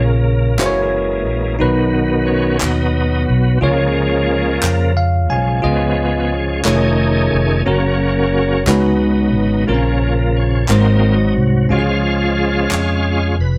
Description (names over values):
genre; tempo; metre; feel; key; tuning
slow gospel; 59 BPM (dotted quarters); 6/8; straight; unclear; A4 = 441 Hz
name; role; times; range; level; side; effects
bell-like tine electric piano; accompaniment; 0.0-13.6 s; G#2 to G#5; -21 LUFS; equal; none
bright tonewheel organ; sustained chords; 0.0-13.6 s; C#3 to B4; -20 LUFS; equal; slow rotary speaker, overdrive, chorus vibrato
fingered electric bass; bass; 0.0-13.6 s; F1 to E#2; -20 LUFS; equal; none
group handclap; percussion; 0.6-13.0 s; none; -25 LUFS; equal; none
room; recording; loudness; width
moderate studio reverb, RT60 0.8 s; band playing live in one room; -16 LUFS; mono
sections
0.0-13.6 A section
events
tonewheel organ solo 0.0-13.6; tine electric piano fill 4.6-5.6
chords
0.0 A#m7; 0.6 F#7; 1.6 B; 3.6 C#; 6.6 F7alt; 7.7 F#; 8.7 C#9sus4; 9.7 A#m; 10.7 G#7; 11.7 C#